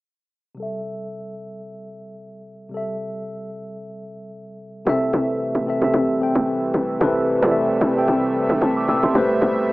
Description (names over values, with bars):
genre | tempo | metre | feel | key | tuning
amapiano | 112 BPM | 4/4 | swing 55% on 16ths | C major | A4 = 439 Hz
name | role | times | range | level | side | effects
mellow tine electric piano | accompaniment | 0.5-9.7 s | C3 to E6 | -22 LUFS | equal | medium stereo tremolo, low-pass filter
warm analog pad | sustained chords | 4.9-9.7 s | B2 to E5 | -24 LUFS | equal | chorus
tight log drum bass | bass | 4.9-9.7 s | A1 to E2 | -22 LUFS | equal | none
room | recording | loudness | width
moderate studio reverb, RT60 0.5 s | rough home demo mix, small speaker sound | -18 LUFS | side -19 dB against mid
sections
0.6-4.9 A section; 4.9-9.7 B section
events
filter sweep on tine electric piano 0.6-4.9; drop 4.9-9.7; tine electric piano fill 8.3-9.2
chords
0.6 C6; 9.2 Am9